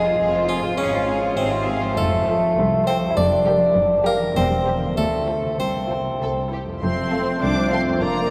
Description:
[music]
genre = cinematic, playful, whimsical film cue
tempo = 100 BPM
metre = 2/4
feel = straight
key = F major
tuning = A4 = 441 Hz
[part]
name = clear studio violin section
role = melody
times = 0.0-8.3 s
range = Bb4 to D6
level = -35 LUFS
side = equal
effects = none
[part]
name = harpsichord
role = melody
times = 0.0-6.5 s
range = C4 to D5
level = -32 LUFS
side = equal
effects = none
[part]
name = clear chamber violin section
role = second line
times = 0.0-7.9 s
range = F4 to F5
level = -33 LUFS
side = equal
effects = none
[part]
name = mellow bassoon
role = accompaniment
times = 0.0-8.3 s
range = C3 to E4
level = -24 LUFS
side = equal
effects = none
[part]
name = rich studio viola section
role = accompaniment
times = 0.0-8.3 s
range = Bb3 to G4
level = -32 LUFS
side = equal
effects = none
[part]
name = concert harp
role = arpeggios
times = 0.0-8.3 s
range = F2 to D5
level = -32 LUFS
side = equal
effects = none
[part]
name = rich studio cello section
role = bass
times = 0.0-8.3 s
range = C2 to Ab2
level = -30 LUFS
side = equal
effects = none
[part]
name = rich studio double bass section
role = bass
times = 0.0-8.3 s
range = E1 to D2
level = -31 LUFS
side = equal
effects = none
[part]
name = mellow clarinet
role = second line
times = 6.8-8.3 s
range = F4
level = -34 LUFS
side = equal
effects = none
[part]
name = warm oboe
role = second line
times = 6.8-8.3 s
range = C5 to D5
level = -31 LUFS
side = equal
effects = none
[part]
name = mellow French horn section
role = sustained chords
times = 6.8-8.3 s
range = A3 to D4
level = -30 LUFS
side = equal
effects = none
[sound]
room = wet cathedral reverb, RT60 5.0 s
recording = none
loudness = -20 LUFS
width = mono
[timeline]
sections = 0.0-6.8 A section; 6.8-8.3 B section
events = none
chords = 0.0 Fm; 0.8 Fm/Ab; 2.0 F; 3.2 Gm7/F; 4.4 C/E; 5.0 Dm7; 5.6 F/C; 6.8 F

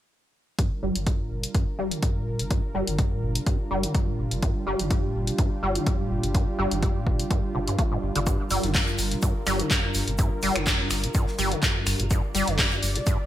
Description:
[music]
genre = acid house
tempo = 125 BPM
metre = 4/4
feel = swing 54% on 16ths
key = G minor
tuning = A4 = 435 Hz
[part]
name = warm analog pad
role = sustained chords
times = 0.6-13.3 s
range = G3 to D5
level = -33 LUFS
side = right 1 dB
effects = chorus, sidechain pumping
[part]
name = acid bass, saw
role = riff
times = 0.6-13.2 s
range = F2 to Bb3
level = -28 LUFS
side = equal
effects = overdrive, ensemble chorus, sidechain pumping, digital delay
[part]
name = electronic kick drum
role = drums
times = 0.6-13.2 s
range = none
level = -25 LUFS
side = equal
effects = none
[part]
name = punchy analog drum machine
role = drums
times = 0.6-13.2 s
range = finger snaps, handclaps, hi-hat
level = -28 LUFS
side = equal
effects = gated reverb
[part]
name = round analog bass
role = bass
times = 0.8-13.0 s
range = G1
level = -30 LUFS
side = equal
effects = sidechain pumping
[part]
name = gated 80s drum kit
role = drums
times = 8.3-13.2 s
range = hi-hat, shaker, snare drum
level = -38 LUFS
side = right 1 dB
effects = none
[sound]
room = light reverb, small room reverb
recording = bright 1980s-style digital production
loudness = -23 LUFS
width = side -12 dB against mid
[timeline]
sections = 0.6-13.3 A section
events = filter sweep on acid bass 0.6-13.3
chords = 0.6 Gm7

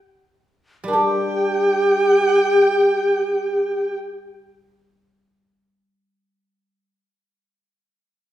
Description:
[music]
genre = chinese traditional, Chinese chamber ensemble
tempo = free time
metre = none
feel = none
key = unclear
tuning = A4 = 442 Hz
[part]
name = guzheng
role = accompaniment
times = 0.8-6.9 s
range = G3 to G4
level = -24 LUFS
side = equal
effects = none
[part]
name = warm erhu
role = melody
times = 0.9-3.9 s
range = G5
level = -24 LUFS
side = right 2 dB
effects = none
[part]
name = breathy mellow low xiao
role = second line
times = 0.9-4.0 s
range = G4 to Bb4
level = -17 LUFS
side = equal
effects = none
[sound]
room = wet recital hall reverb, RT60 1.4 s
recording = heard from further back in the room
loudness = -16 LUFS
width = side -12 dB against mid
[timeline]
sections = 1.0-6.7 A section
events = none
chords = none

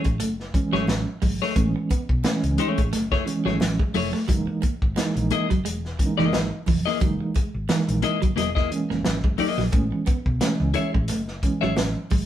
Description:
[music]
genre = funk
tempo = 88 BPM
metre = 4/4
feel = swing 56% on 16ths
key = unclear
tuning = A4 = 440 Hz
[part]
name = mellow reed electric piano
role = stabs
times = 0.0-12.0 s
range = E3 to Eb4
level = -26 LUFS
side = right 3 dB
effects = fast tremolo
[part]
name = vintage drum kit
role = drums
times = 0.0-12.3 s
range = hi-hat, kick drum, snare drum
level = -24 LUFS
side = equal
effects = none
[part]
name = clean electric guitar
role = riff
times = 0.1-12.2 s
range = Fb3 to Cb4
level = -28 LUFS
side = right 2 dB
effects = none
[part]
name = hollow-body short-scale fingered electric bass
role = bass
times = 0.1-12.3 s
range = Fb1 to C#2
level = -28 LUFS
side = equal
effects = none
[part]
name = congas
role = percussion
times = 0.5-12.3 s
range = none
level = -32 LUFS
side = right 5 dB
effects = none
[part]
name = clean electric guitar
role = accompaniment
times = 0.7-11.7 s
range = A3 to E5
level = -25 LUFS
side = left 6 dB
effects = none
[sound]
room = moderate studio reverb, RT60 0.7 s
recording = band playing live in one room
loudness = -21 LUFS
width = side -11 dB against mid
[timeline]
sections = 0.0-12.3 A section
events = none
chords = 0.0 Amaj7; 4.3 Gb13; 9.7 Amaj7

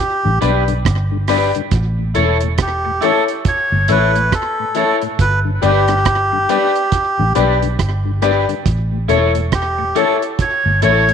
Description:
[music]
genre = roots reggae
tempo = 69 BPM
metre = 4/4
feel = swing 60% on 16ths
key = A mixolydian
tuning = A4 = 440 Hz
[part]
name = melodica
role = melody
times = 0.0-11.1 s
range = G4 to C#5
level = -18 LUFS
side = right 1 dB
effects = dub echo
[part]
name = mellow tonewheel organ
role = accompaniment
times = 0.2-11.1 s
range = G2 to D4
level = -24 LUFS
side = left 11 dB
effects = chorus vibrato, slow rotary speaker, slapback echo
[part]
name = vintage muted fingered electric bass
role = bass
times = 0.3-11.1 s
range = E1 to B1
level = -17 LUFS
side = right 1 dB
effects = none
[part]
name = electric guitar at the edge of break-up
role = accompaniment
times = 0.4-11.0 s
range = D4 to C#5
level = -23 LUFS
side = right 14 dB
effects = spring reverb, dub echo
[part]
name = bright baby grand piano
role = stabs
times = 0.4-11.1 s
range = E4 to D5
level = -20 LUFS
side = left 10 dB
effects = none
[part]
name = deep reggae drum kit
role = drums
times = 0.4-11.1 s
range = hi-hat, kick drum, rim click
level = -20 LUFS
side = right 4 dB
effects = slapback echo
[sound]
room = light reverb, small room reverb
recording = 1960s-style stereo with parts hard left and right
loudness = -13 LUFS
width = side -7 dB against mid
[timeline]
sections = 0.0-11.1 A section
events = none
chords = 0.0 G; 1.7 A; 5.2 G; 8.7 A

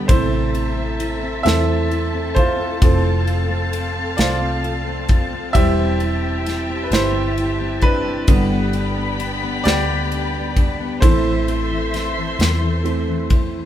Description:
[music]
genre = six-eight pop ballad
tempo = 44 BPM (dotted quarters)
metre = 6/8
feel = straight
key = unclear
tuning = A4 = 440 Hz
[part]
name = clear upright piano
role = accompaniment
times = 0.0-13.7 s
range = C3 to E5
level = -22 LUFS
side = right 2 dB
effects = none
[part]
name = warm studio string section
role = sustained chords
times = 0.0-13.7 s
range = C4 to C6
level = -26 LUFS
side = left 2 dB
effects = none
[part]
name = fingerpicked steel-string acoustic guitar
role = arpeggios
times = 0.0-13.7 s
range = E3 to F4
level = -29 LUFS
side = left 6 dB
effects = none
[part]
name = vintage muted fingered electric bass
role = bass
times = 0.0-13.7 s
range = E1 to E2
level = -23 LUFS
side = equal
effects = none
[part]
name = modern studio drum kit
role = drums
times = 0.1-13.5 s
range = kick drum, ride cymbal, snare drum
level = -18 LUFS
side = equal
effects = none
[sound]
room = light reverb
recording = band playing live in one room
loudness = -16 LUFS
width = side -11 dB against mid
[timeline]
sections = 0.0-13.7 A section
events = upright piano solo 0.0-13.7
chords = 0.1 Am; 2.8 F; 5.5 C/E; 8.3 G; 11.0 Am

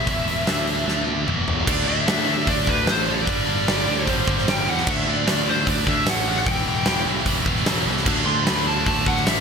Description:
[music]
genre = hard rock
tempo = 150 BPM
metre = 4/4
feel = straight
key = unclear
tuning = A4 = 440 Hz
[part]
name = smooth overdriven lead guitar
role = melody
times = 0.0-9.4 s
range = B4 to C6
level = -25 LUFS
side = equal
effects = none
[part]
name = heavy high-gain guitar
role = riff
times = 0.0-9.4 s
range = E2 to D4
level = -23 LUFS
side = equal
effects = distortion
[part]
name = picked electric bass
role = bass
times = 0.0-9.4 s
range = E1 to E2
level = -27 LUFS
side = equal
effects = none
[part]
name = huge arena drum kit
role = drums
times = 0.1-9.4 s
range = crash cymbal, hi-hat, kick drum, snare drum, toms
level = -23 LUFS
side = equal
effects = gated reverb
[sound]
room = moderate lush hall reverb, RT60 1.7 s, studio reverb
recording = bright 1980s-style digital production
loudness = -18 LUFS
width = side -6 dB against mid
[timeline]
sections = 0.0-1.7 A section; 1.7-9.4 B section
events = drum fill 0.9-1.7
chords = 0.5 D5; 1.3 E5; 1.7 D5; 3.3 G5; 4.9 D5; 6.5 Em; 8.1 D5

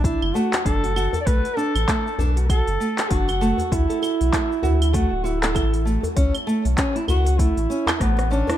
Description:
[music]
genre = organic downtempo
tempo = 98 BPM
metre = 4/4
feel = swing 58% on 16ths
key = B minor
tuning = A4 = 441 Hz
[part]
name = warm duduk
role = melody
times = 0.0-8.6 s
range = B3 to D5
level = -25 LUFS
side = right 2 dB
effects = vintage 12-bit sampler grit, digital delay
[part]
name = nylon-string guitar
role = arpeggios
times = 0.0-8.6 s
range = A3 to A4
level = -26 LUFS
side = right 1 dB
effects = digital delay
[part]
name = warm sub bass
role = bass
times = 0.0-8.4 s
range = D1 to D2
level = -21 LUFS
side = equal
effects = tube saturation
[part]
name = electronic kick drum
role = drums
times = 0.0-8.1 s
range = none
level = -23 LUFS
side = equal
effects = overdrive
[part]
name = organic electronic drum kit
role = drums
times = 0.0-8.6 s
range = cabasa, claves, handclaps, hi-hat, rim click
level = -27 LUFS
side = equal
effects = overdrive
[part]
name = djembe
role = percussion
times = 0.3-8.6 s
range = none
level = -32 LUFS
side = left 3 dB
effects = none
[sound]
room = digital ambience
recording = dark, warm production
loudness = -18 LUFS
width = side -12 dB against mid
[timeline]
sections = 0.0-8.6 A section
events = drum fill 8.0-8.6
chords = 0.0 Bm7; 3.7 D; 6.2 A

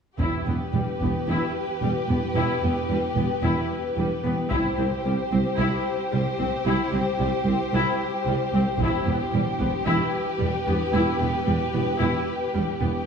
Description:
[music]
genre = cinematic, epic orchestral film score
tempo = 112 BPM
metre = 4/4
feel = straight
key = E minor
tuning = A4 = 440 Hz
[part]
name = rich symphonic violin section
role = melody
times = 0.2-13.1 s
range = B4 to C5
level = -31 LUFS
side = left 4 dB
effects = none
[part]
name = warm symphonic violin section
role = second line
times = 0.2-13.0 s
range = G4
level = -29 LUFS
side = left 1 dB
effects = none
[part]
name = clear symphonic viola section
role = accompaniment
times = 0.2-12.9 s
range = G3 to E4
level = -29 LUFS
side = equal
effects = none
[part]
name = rich symphonic cello section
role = bass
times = 0.2-12.9 s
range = C2 to E2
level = -28 LUFS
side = right 2 dB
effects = none
[part]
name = rich symphonic double bass section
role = bass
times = 0.2-12.9 s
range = E1 to C2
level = -28 LUFS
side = right 3 dB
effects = none
[part]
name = taiko ensemble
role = drums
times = 0.2-1.3, 4.5-5.5, 8.8-9.8 s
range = none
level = -33 LUFS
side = left 1 dB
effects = none
[sound]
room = wet scoring stage reverb, RT60 1.6 s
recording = studio reverb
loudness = -22 LUFS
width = side -6 dB against mid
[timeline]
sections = 0.2-13.1 A section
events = build-up 0.2-13.1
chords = 0.2 Em; 4.5 C; 8.8 Em

